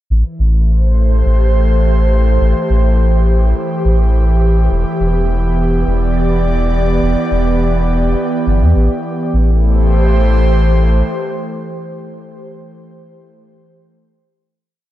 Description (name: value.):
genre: ambient dub.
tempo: 104 BPM.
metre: 4/4.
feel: straight.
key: A minor.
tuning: A4 = 441 Hz.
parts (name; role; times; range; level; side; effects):
airy breathy pad; sustained chords; 0.1-12.4 s; E3 to D5; -17 LUFS; right 1 dB; chorus.
soft dub sub bass; bass; 0.1-11.0 s; E1 to E2; -12 LUFS; equal; none.
room: little or no reverb.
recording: none.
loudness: -11 LUFS.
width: side -14 dB against mid.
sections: 0.1-9.3 groove; 9.3-11.6 final chord.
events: none.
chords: 0.1 Am7; 4.7 Em7; 9.3 Am7.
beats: | 0.10 0.68 1.25 1.83 | 2.41 2.99 3.56 4.14 | 4.72 5.29 5.87 6.45 | 7.02 7.60 8.18 8.76 | 9.33 9.91 10.49 11.06.